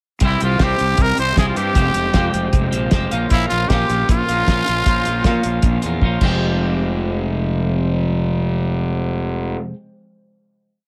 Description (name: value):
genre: indie rock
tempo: 155 BPM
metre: 4/4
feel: straight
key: F harmonic minor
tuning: A4 = 440 Hz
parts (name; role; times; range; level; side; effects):
- growling trumpet; melody; 0.2-6.0 s; E4 to C5; -22 LUFS; equal; plate reverb
- twelve-string electric guitar; riff; 0.2-9.8 s; F2 to G4; -24 LUFS; equal; spring reverb
- fuzz fingered electric bass; bass; 0.2-9.5 s; F1 to Bb2; -23 LUFS; equal; overdrive
- cloth-damped thuddy drum kit; drums; 0.2-6.3 s; crash cymbal, hi-hat, kick drum, snare drum; -21 LUFS; equal; none
room: light reverb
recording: none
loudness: -18 LUFS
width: mono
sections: 0.2-6.4 interlude; 6.4-9.5 final hit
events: drum fill 6.0-6.4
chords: 0.2 C; 1.8 Fmadd9; 3.1 Bbm; 6.2 Fmadd9